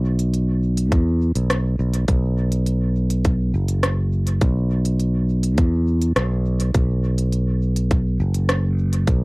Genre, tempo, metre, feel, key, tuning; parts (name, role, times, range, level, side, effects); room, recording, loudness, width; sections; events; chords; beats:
ambient dub; 103 BPM; 4/4; straight; A4 = 441 Hz
fingered electric bass; bass; 0.0-9.2 s; F#1 to E2; -18 LUFS; equal
organic electronic drum kit; drums; 0.2-9.2 s; hi-hat, rim click; -25 LUFS; equal; overdrive, cassette tape, dub echo
electronic kick drum; drums; 0.9-9.2 s; -18 LUFS; equal; overdrive, cassette tape
little or no reverb; home recording on cassette; -18 LUFS; side -28 dB against mid
0.0-9.2 A section
0.34 0.92 1.50 | 2.08 2.67 3.25 3.83 | 4.41 5.00 5.58 6.16 | 6.74 7.33 7.91 8.49 | 9.07